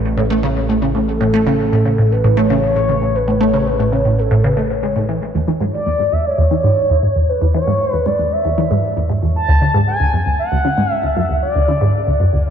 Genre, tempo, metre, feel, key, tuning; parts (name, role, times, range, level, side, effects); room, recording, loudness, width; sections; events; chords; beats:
ambient, sequencer-driven space music; 116 BPM; 4/4; straight; A4 = 440 Hz
expressive synth lead; melody; 0.0-12.5 s; A4 to A5; -19 LUFS; equal; wide subtle chorus, ping-pong delay
analog drone; bass; 0.0-5.2 s; A1; -21 LUFS; equal; chorus
resonant blip pluck; riff; 0.2-12.4 s; D2 to A3; -15 LUFS; equal; phaser, lush chorus, ping-pong delay
wet lush hall reverb, RT60 2.4 s; dreamy mix soaked in reverb; -13 LUFS; side -8 dB against mid
0.0-5.2 A section; 5.2-12.5 B section
filter sweep on synth arpeggio sound 5.2-12.5
0.0 A; 5.2 E; 9.4 D
0.04 0.56 | 1.08 1.60 2.11 2.63 | 3.15 3.67 4.18 4.70 | 5.22 5.74 6.25 6.77 | 7.29 7.80 8.32 8.84 | 9.36 9.87 10.39 10.91 | 11.43 11.94 12.46